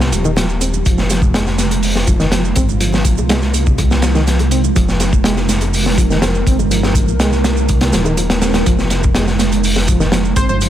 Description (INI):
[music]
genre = breakbeat, breaks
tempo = 123 BPM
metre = 4/4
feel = straight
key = F minor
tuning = A4 = 442 Hz
[part]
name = deep dark ambient pad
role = sustained chords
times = 0.0-10.7 s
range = Ab3 to Bb4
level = -20 LUFS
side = right 4 dB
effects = chorus, built-in reverb, sidechain pumping
[part]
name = dark detuned saw bass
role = bass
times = 0.0-10.7 s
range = Eb1 to C2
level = -17 LUFS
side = equal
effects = none
[part]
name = crunchy breakbeat drum kit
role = drums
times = 0.0-10.7 s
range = hi-hat, kick drum, snare drum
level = -16 LUFS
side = equal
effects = none
[part]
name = shaker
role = drums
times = 0.0-10.7 s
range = none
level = -28 LUFS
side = right 12 dB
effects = none
[part]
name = bongos and congas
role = percussion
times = 0.0-10.6 s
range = none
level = -29 LUFS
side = right 1 dB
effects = none
[part]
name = barky reed electric piano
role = riff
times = 0.1-10.7 s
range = Eb3 to C4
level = -22 LUFS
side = equal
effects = overdrive, fast tremolo, tube saturation, vintage 12-bit sampler grit, ping-pong delay
[part]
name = plucky unison lead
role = melody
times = 10.4-10.6 s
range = C5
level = -18 LUFS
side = left 1 dB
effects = small speaker sound
[sound]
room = small room ambience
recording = none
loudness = -12 LUFS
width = side -11 dB against mid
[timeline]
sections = 0.0-10.7 A section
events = none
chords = 0.0 Fm7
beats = 0.37 | 0.86 1.34 1.83 2.32 | 2.81 3.29 3.78 4.27 | 4.76 5.25 5.73 6.22 | 6.71 7.20 7.69 8.17 | 8.66 9.15 9.64 10.12 | 10.61